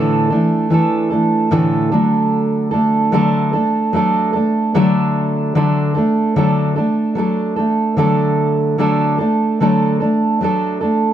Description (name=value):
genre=pop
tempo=74 BPM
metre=4/4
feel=swing 55% on 16ths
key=D major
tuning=A4 = 441 Hz
part: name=fingerpicked steel-string acoustic guitar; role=solo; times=0.0-11.1 s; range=A2 to A4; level=-14 LUFS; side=right 1 dB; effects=none
room=moderate studio reverb, RT60 0.7 s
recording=none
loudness=-14 LUFS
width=side -10 dB against mid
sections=0.0-5.6 A section; 5.6-11.1 B section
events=none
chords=0.0 Asus4; 1.9 D